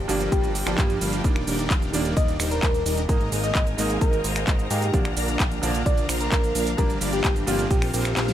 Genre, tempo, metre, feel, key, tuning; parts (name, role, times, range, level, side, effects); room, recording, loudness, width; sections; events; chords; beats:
EDM, festival progressive house; 130 BPM; 4/4; straight; Eb major; A4 = 440 Hz
clear baby grand piano; accompaniment; 0.0-8.3 s; G2 to F4; -31 LUFS; right 3 dB; vintage 12-bit sampler grit, sidechain pumping
clear studio string section; sustained chords; 0.0-8.3 s; Eb3 to Bb5; -36 LUFS; left 4 dB; sidechain pumping
supersaw chords; riff; 0.0-8.3 s; F3 to Ab5; -30 LUFS; right 1 dB; phaser, cassette tape, sidechain pumping
fat analog bass; bass; 0.0-8.3 s; Eb1 to Ab2; -28 LUFS; equal; sidechain pumping
soft struck synth lead; melody; 0.1-8.3 s; G4 to Eb5; -29 LUFS; left 1 dB; chorus, dub echo
big-room dance drum kit; drums; 0.1-8.3 s; finger snaps, handclaps, hi-hat, shaker, snare drum; -29 LUFS; right 1 dB
electronic kick drum; drums; 0.3-7.8 s; -22 LUFS; equal
little or no reverb; -20 LUFS; side -11 dB against mid
0.0-8.3 A section
kick drops out 8.2; drum fill 8.2
0.0 Gm7; 1.2 Ebmaj7; 3.1 Absus2; 4.9 Bb; 6.8 Gm7; 7.7 Bbsus2
0.32 0.78 | 1.24 1.71 2.17 2.63 | 3.09 3.55 4.01 4.47 | 4.94 5.40 5.86 6.32 | 6.78 7.24 7.71 8.17